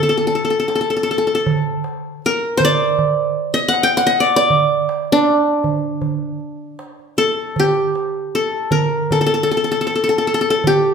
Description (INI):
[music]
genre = Arabic maqam ensemble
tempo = 78 BPM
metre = 4/4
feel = straight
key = D maqam hijaz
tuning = A4 = 440 Hz
[part]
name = qanun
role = melody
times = 0.0-10.9 s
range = D4 to G5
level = -16 LUFS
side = left 1 dB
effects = none
[part]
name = darbuka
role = percussion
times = 0.5-10.8 s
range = none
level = -22 LUFS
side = right 5 dB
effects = none
[sound]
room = wet large studio reverb, RT60 1.2 s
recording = band playing live in one room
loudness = -15 LUFS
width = side -6 dB against mid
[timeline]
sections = 0.0-7.6 A section; 7.6-10.9 B section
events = none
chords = none